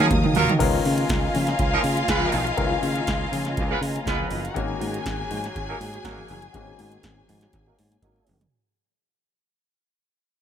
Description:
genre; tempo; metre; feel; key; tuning
disco; 121 BPM; 4/4; straight; unclear; A4 = 440 Hz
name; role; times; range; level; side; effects
warm studio violin section; second line; 0.0-8.2 s; Db4 to Bb5; -30 LUFS; left 1 dB; tape echo
clear grand piano; accompaniment; 0.0-8.5 s; Eb3 to Bb4; -30 LUFS; left 7 dB; low-pass filter
warm studio string section; sustained chords; 0.0-8.5 s; Gb3 to Eb6; -31 LUFS; equal; low-pass filter
clear horn section; stabs; 0.0-8.4 s; F3 to Cb5; -26 LUFS; right 4 dB; low-pass filter
fingered electric bass; bass; 0.0-8.5 s; Gb1 to Eb3; -27 LUFS; equal; none
electro analog drum machine; drums; 0.0-8.5 s; crash cymbal, hi-hat, kick drum, snare drum, toms; -28 LUFS; right 1 dB; none
congas; percussion; 0.1-8.4 s; none; -34 LUFS; left 6 dB; none
room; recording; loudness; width
light reverb; none; -21 LUFS; side -9 dB against mid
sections
0.6-8.5 A section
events
drum fill 0.0-0.6, 8.0-8.5; band accent 0.0-0.6; fade-out 0.6-8.5; filter sweep 0.6-8.5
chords
0.0 Ebm11; 0.6 Db13; 4.6 Ab9sus4

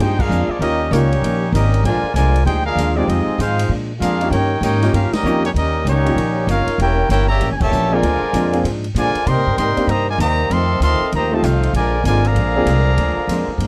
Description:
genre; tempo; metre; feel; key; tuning
jazz, big band swing; 194 BPM; 4/4; swing 62% on 8ths; Bb major; A4 = 440 Hz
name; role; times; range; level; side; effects
warm trumpet section; melody; 0.0-13.7 s; Bb3 to C6; -23 LUFS; equal; none
muted trombone section; second line; 0.0-13.7 s; Bb2 to G4; -27 LUFS; equal; none
archtop guitar, miked and amplified; accompaniment; 0.0-13.7 s; F2 to G4; -28 LUFS; equal; none
upright bass; bass; 0.0-13.7 s; E1 to C3; -20 LUFS; equal; none
swinging big-band drum kit; drums; 0.0-13.7 s; crash cymbal, hi-hat, kick drum, ride cymbal, snare drum; -33 LUFS; equal; none
clear grand piano; accompaniment; 0.6-12.7 s; Ab3 to Bb4; -23 LUFS; equal; none
room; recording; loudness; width
light reverb; dry, close 1970s-style studio recording; -17 LUFS; mono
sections
0.0-13.7 A section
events
band accent 0.1, 5.1, 7.6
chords
0.0 Bb7; 0.6 Eb7; 1.8 Bb7; 3.1 Fm7; 3.7 Bb7; 4.3 Eb7; 6.8 Edim7; 8.0 Bb7; 9.3 Cm7; 10.5 F7; 11.7 Bb7

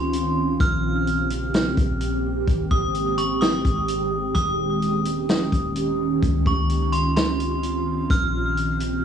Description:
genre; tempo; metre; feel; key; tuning
hip hop, atmospheric cloud-rap; 128 BPM; 4/4; half-time; Bb dorian; A4 = 440 Hz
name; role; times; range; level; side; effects
metallic FM bell; melody; 0.0-9.0 s; C6 to F6; -27 LUFS; equal; chorus, low-pass filter, cassette tape, tape echo, plate reverb
ethereal airy pad; sustained chords; 0.0-9.0 s; Db3 to G4; -24 LUFS; right 2 dB; ensemble chorus, built-in reverb, sidechain pumping
soft 808-style bass; bass; 0.0-9.0 s; Eb1 to Db2; -27 LUFS; left 1 dB; none
vintage drum kit; drums; 0.1-8.9 s; hi-hat, kick drum, snare drum; -23 LUFS; left 1 dB; none
room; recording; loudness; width
moderate studio reverb, RT60 0.6 s; home recording on cassette, studio reverb; -20 LUFS; side -8 dB against mid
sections
0.0-9.0 A section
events
none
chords
0.0 Dbmaj9; 0.6 Bbm69; 2.5 Abmaj7; 4.4 Eb7; 6.2 Dbmaj9; 8.1 Bbm69

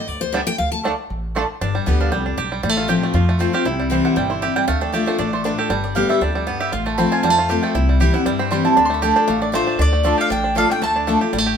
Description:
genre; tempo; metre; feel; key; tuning
bluegrass; 235 BPM; 4/4; swing 54% on 8ths; D dorian; A4 = 441 Hz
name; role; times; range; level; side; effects
picked steel-string acoustic guitar; accompaniment; 0.0-11.6 s; F2 to A5; -21 LUFS; left 4 dB; none
upright bass; bass; 0.1-11.5 s; G1 to G2; -23 LUFS; equal; none
bluegrass banjo; arpeggios; 0.3-11.6 s; G3 to G4; -23 LUFS; right 4 dB; none
mandolin; stabs; 0.3-11.2 s; A3 to C6; -22 LUFS; right 4 dB; none
mandolin; melody; 9.6-11.6 s; C5 to A5; -21 LUFS; equal; none
lap resonator guitar; second line; 9.6-11.5 s; C5 to A5; -29 LUFS; left 5 dB; none
room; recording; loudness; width
moderate stone room reverb, RT60 1.0 s; band playing live in one room; -16 LUFS; side -7 dB against mid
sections
0.0-1.6 A section; 1.6-9.8 A section; 9.8-11.6 B section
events
steel-string acoustic guitar solo 0.0-1.6; mandolin solo 1.6-9.8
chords
0.0 G; 0.6 Dm; 1.6 G; 2.6 F/A; 3.7 C; 4.7 Dm; 5.7 G; 6.7 F/A; 7.7 C; 8.8 Dm

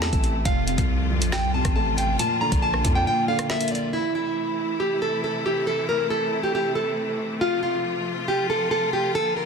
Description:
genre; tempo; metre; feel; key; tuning
hip hop, drill; 138 BPM; 4/4; half-time; A phrygian; A4 = 439 Hz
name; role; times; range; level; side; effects
nylon-string guitar; melody; 0.0-9.5 s; E4 to Bb5; -24 LUFS; right 1 dB; digital delay
dark concert grand piano; accompaniment; 0.0-4.0 s; F2 to Bb3; -27 LUFS; left 1 dB; none
bright symphonic string section; sustained chords; 0.0-9.5 s; C3 to F4; -30 LUFS; left 2 dB; none
distorted 808-style bass; bass; 0.0-3.1 s; F1 to F2; -26 LUFS; equal; distortion
drill drum kit; drums; 0.0-3.8 s; hi-hat, kick drum, rim click, snare drum; -25 LUFS; equal; none
room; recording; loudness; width
light reverb, small room ambience; dense, heavily limited modern master; -21 LUFS; side -5 dB against mid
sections
0.0-3.9 A section; 3.9-9.5 B section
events
kick muted 3.1-3.9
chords
0.5 F; 2.2 Bb; 3.9 Am; 7.4 F

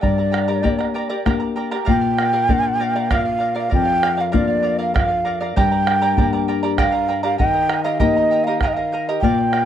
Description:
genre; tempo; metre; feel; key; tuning
andean folk, Andean ensemble; 98 BPM; 3/4; straight; unclear; A4 = 441 Hz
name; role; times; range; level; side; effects
breathy mellow large quena; melody; 0.0-9.7 s; D5 to G5; -20 LUFS; right 2 dB; none
charango; accompaniment; 0.0-9.7 s; G4 to Bb5; -26 LUFS; right 3 dB; none
flamenco guitar; accompaniment; 0.0-9.7 s; F2 to G4; -21 LUFS; left 6 dB; none
bombo; percussion; 0.0-9.7 s; none; -22 LUFS; right 2 dB; none
room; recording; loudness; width
studio reverb; dry, close 1970s-style studio recording; -16 LUFS; side -10 dB against mid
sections
0.0-1.9 A section; 1.9-9.7 B section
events
none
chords
0.0 Gm; 1.9 Bb; 5.6 Gm; 7.4 Eb

